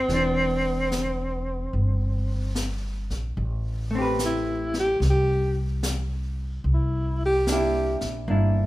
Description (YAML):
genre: jazz ballad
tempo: 73 BPM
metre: 4/4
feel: swing 68% on 8ths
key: C major, A minor from 3.4 s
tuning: A4 = 439 Hz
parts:
  - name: breathy alto saxophone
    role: melody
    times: 0.0-8.0 s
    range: C4 to G4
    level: -25 LUFS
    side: equal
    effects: none
  - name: hollow-body jazz guitar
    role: accompaniment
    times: 0.0-8.7 s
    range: E3 to B4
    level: -29 LUFS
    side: equal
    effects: none
  - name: upright bass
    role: bass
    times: 0.0-8.7 s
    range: E1 to C2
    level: -25 LUFS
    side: equal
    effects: none
  - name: jazz brush drum kit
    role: drums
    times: 0.1-8.7 s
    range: brushed snare drum, hi-hat, snare drum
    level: -34 LUFS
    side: left 1 dB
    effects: none
room: light reverb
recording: none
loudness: -23 LUFS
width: side -17 dB against mid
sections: 0.0-3.4 A section; 3.4-8.7 B section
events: alto saxophone solo 3.4-8.7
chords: 0.0 Cadd9; 3.4 Am9; 6.7 C9